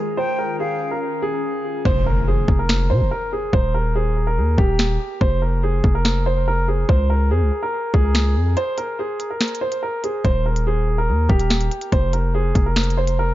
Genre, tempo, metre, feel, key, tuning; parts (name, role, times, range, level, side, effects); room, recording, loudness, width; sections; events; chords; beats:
hip hop, drill; 143 BPM; 4/4; half-time; F minor; A4 = 440 Hz
warm concert grand piano; melody; 0.0-13.3 s; G4 to C5; -23 LUFS; equal; low-pass filter, tape echo
glassy FM pad; sustained chords; 0.0-1.8 s; Eb3 to F4; -30 LUFS; left 2 dB; ensemble chorus, built-in reverb, low-pass filter
reedy concert flute; second line; 0.2-1.0 s; F5 to G5; -29 LUFS; left 4 dB; tape echo
distorted 808-style bass; bass; 1.9-13.3 s; Eb1 to C3; -19 LUFS; equal; distortion
drill drum kit; drums; 1.9-13.2 s; finger snaps, hi-hat, kick drum, snare drum; -19 LUFS; equal
impact; sound effects; 1.9-3.5 s; -28 LUFS; equal
digital ambience; echo-heavy mix, nothing above 7.5 kHz; -17 LUFS; side -15 dB against mid
0.0-1.9 A section; 1.9-13.3 B section
hi-hats muted 1.9-8.6; impact 1.9-3.5; break 8.6-9.4
0.2 Dbadd9; 1.9 F5; 3.5 Eb; 5.2 Fmadd11; 6.9 Db; 8.6 N.C.; 10.2 Eb; 11.9 Fmadd11
| 0.18 0.59 1.01 1.43 | 1.85 2.27 2.69 3.11 | 3.53 3.95 4.37 4.79 | 5.21 5.63 6.05 6.47 | 6.89 7.31 7.73 8.15 | 8.57 8.99 9.41 9.83 | 10.25 10.66 11.09 11.50 | 11.92 12.34 12.76 13.18